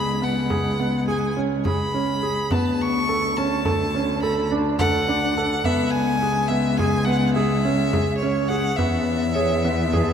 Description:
contemporary instrumental, chamber music in an uneven meter; 210 BPM (eighths); 11/8; straight; A4 = 440 Hz
warm violin; melody; 0.0-10.1 s; C#5 to C#6; -26 LUFS; left 2 dB
warm concert grand piano; arpeggios; 0.0-10.1 s; B3 to A4; -23 LUFS; right 1 dB
dark cello; bass; 0.0-10.1 s; C#2 to E2; -25 LUFS; left 1 dB
frame drum; percussion; 0.5-10.1 s; -29 LUFS; left 1 dB
vibraphone with hard mallets; second line; 9.3-10.1 s; B4 to C#5; -26 LUFS; right 2 dB
wet cathedral reverb, RT60 5.3 s; in a vast, echoing space; -19 LUFS; side -8 dB against mid
0.0-10.1 A section
0.0 C#5; 2.5 Bm9/D; 5.7 C#m7; 8.8 E

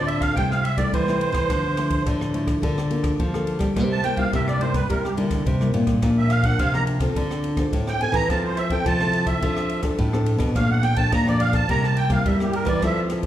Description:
samba and choro; 106 BPM; 4/4; straight; A4 = 440 Hz
musette accordion; melody; 0.0-13.0 s; G4 to Bb5; -25 LUFS; right 3 dB; slapback echo
nylon-string guitar; accompaniment; 0.0-13.3 s; F2 to A4; -26 LUFS; left 2 dB; slapback echo
nylon-string guitar; bass; 0.0-13.3 s; A2 to G3; -23 LUFS; equal
open jazz drum kit; drums; 0.1-13.3 s; kick drum, ride cymbal, rim click; -27 LUFS; equal
light reverb, small room ambience; live gig heard through the venue's PA, club reverb; -19 LUFS; side -12 dB against mid
0.0-13.3 A section
accordion solo 0.0-13.3
0.4 Am7/C; 1.5 Dmadd9; 2.6 Bbmaj7/D; 3.8 C7; 6.0 Bb; 7.2 Dm7; 8.3 Fmaj7; 9.4 Dm7/F; 10.6 Bbmaj7; 11.7 C7

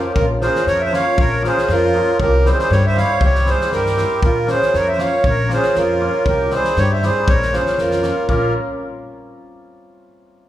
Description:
balkan folk, Balkan wedding band; 118 BPM; 2/4; swing 54% on 16ths; Bb dorian sharp4; A4 = 440 Hz
accordion; melody; 0.0-8.5 s; Bb4 to F5; -19 LUFS; right 2 dB
accordion; second line; 0.0-8.5 s; F4 to Db5; -24 LUFS; right 2 dB; light tremolo tuning
hammered dulcimer; accompaniment; 0.0-8.5 s; F3 to Db5; -21 LUFS; left 1 dB
upright bass; bass; 0.2-8.5 s; Bb1 to G2; -21 LUFS; left 1 dB
loose indie drum kit; percussion; 0.2-8.5 s; kick drum, snare drum; -22 LUFS; equal
wet recital hall reverb, RT60 1.8 s; recorded in a church or concert hall; -14 LUFS; side -13 dB against mid
0.2-8.3 A section; 8.3-9.3 B section
0.2 Bbm; 2.2 C; 4.2 Bbm; 6.3 C; 7.3 Bbm

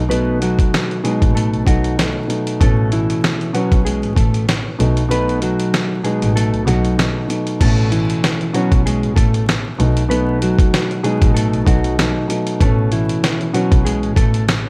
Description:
hip hop, boom-bap hip-hop; 96 BPM; 4/4; swing 55% on 16ths; A lydian; A4 = 440 Hz
warm double bass; bass; 0.0-14.6 s; A1 to B1; -22 LUFS; equal
mellow electric guitar; melody; 0.1-14.5 s; E3 to B4; -23 LUFS; equal; high-pass filter, low-pass filter
dark grand piano; accompaniment; 0.1-14.7 s; B2 to D#4; -23 LUFS; equal; high-pass filter, low-pass filter
dusty soul sampler-style drum kit; drums; 0.1-14.6 s; crash cymbal, hi-hat, kick drum, snare drum; -20 LUFS; equal
little or no reverb; vinyl crackle; -17 LUFS; mono
0.0-7.6 A section; 7.6-14.7 B section
kick muted 5.1-7.6
0.0 B7; 2.6 Aadd9; 4.8 B7; 7.6 Aadd9; 9.8 B7; 12.6 Aadd9

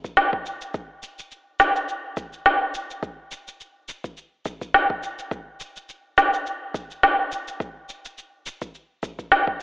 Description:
downtempo; 105 BPM; 4/4; swing 56% on 16ths
electronic kick drum; drums; 0.0-9.6 s; -32 LUFS; equal
electronic shaker and snare drum; drums; 0.0-9.6 s; -19 LUFS; equal
wet concert hall reverb, RT60 2.3 s; dry, gritty hardware recording, telephone sound; -21 LUFS; side -21 dB against mid
0.0-9.6 A section

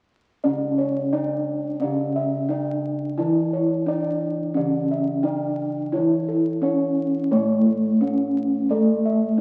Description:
Javanese gamelan; 87 BPM; 4/4; straight; A4 = 440 Hz
gamelan-type bronze metallophone; melody; 0.4-9.4 s; A3 to E4; -24 LUFS; equal
gamelan-type bossed gongs; arpeggios; 0.4-9.4 s; A4 to E5; -30 LUFS; equal
gamelan-type bronze metallophone; accompaniment; 0.5-9.4 s; C#3 to A3; -31 LUFS; equal
gamelan-type bossed gongs; bass; 0.5-9.4 s; C#2 to A4; -32 LUFS; equal
moderate large studio reverb, RT60 1.3 s; very old 78 rpm record, vinyl crackle; -23 LUFS; mono
0.4-9.4 A section

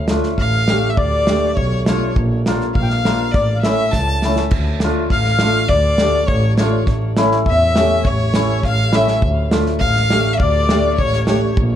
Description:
klezmer; 102 BPM; 2/4; straight; A4 = 441 Hz
muted double bass; bass; 0.0-11.8 s; A1 to E2; -19 LUFS; equal
hammered dulcimer; accompaniment; 0.1-11.4 s; A3 to G4; -21 LUFS; equal
natural country drum kit; drums; 0.1-11.7 s; crash cymbal, kick drum, snare drum; -20 LUFS; equal
clear violin; melody; 0.4-11.6 s; C#5 to A5; -21 LUFS; left 1 dB; tape echo
accordion; second line; 0.4-11.6 s; C#5 to A5; -22 LUFS; left 5 dB; light tremolo tuning
moderate small room reverb, RT60 0.5 s; dark, warm production; -14 LUFS; side -10 dB against mid
0.0-4.5 A section; 4.5-11.8 A section
drum fill 3.9-4.5
0.0 Dm; 2.2 Bb; 3.3 A; 4.5 Dm; 6.9 A; 9.2 Dm

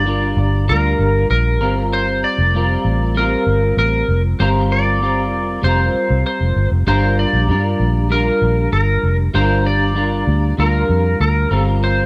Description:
indie pop, bedroom pop; 97 BPM; 4/4; straight; G minor; A4 = 440 Hz
clean lap steel guitar; melody; 0.0-12.1 s; Bb4 to D5; -22 LUFS; equal; analog chorus
clean electric guitar; accompaniment; 0.0-12.1 s; G3 to Bb4; -23 LUFS; equal; ensemble chorus, vibrato effect
vintage muted fingered electric bass; bass; 0.0-12.1 s; F1 to G2; -19 LUFS; equal
digital ambience; -16 LUFS; mono
0.0-12.1 A section
0.0 Gm7; 1.6 C7sus4; 6.9 Gm7; 11.5 C7sus4/G

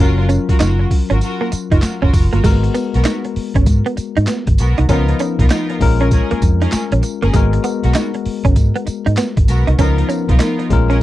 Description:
R&B, new jack swing; 98 BPM; 4/4; swing 64% on 16ths; G# dorian; A4 = 438 Hz
bell-like tine electric piano; accompaniment; 0.0-11.0 s; E#3 to A#4; -21 LUFS; left 8 dB
direct-recorded clean electric guitar; riff; 0.0-11.0 s; G#3 to D#4; -20 LUFS; right 4 dB; ensemble chorus
rich studio string section; stabs; 0.0-11.0 s; B3 to A#4; -25 LUFS; right 2 dB
vintage muted fingered electric bass; bass; 0.0-11.0 s; F#1 to G#2; -15 LUFS; equal
boom bap sampler-style drum kit; drums; 0.3-11.0 s; crash cymbal, handclaps, hi-hat, kick drum, snare drum, tambourine; -16 LUFS; equal; overdrive
little or no reverb; dry, close 1970s-style studio recording; -13 LUFS; side -15 dB against mid
0.0-2.4 A section; 2.4-11.0 B section
0.0 F#maj7; 2.4 G#m9; 4.9 C#13; 5.8 A#m7; 7.3 G#m9; 9.8 C#13

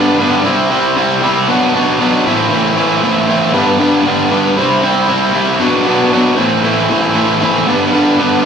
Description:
rock; 117 BPM; 4/4; straight; A4 = 440 Hz
crunchy overdriven guitar; solo; 0.0-8.5 s; G2 to E4; -10 LUFS; equal
wet large studio reverb, RT60 1.3 s; band playing live in one room; -10 LUFS; side -7 dB against mid
0.0-8.5 A section
0.5 C; 1.5 Bm; 2.3 Am; 3.6 G; 4.6 C; 5.6 Bm; 6.4 Am; 7.7 G

